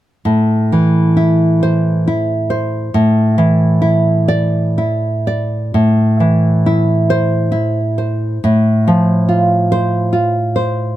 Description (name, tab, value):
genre	romantic piece for solo classical guitar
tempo	39-48 BPM (dotted quarters)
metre	6/8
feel	rubato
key	A minor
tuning	A4 = 440 Hz
part	nylon-string guitar	solo	0.3-11.0 s	A2 to D5	-12 LUFS	equal	none
room	light reverb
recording	close, detailed microphones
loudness	-12 LUFS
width	side -14 dB against mid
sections	0.3-5.8 A section; 5.8-11.0 B section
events	none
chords	0.3 Am; 2.9 Asus4; 5.8 Am; 8.4 F/A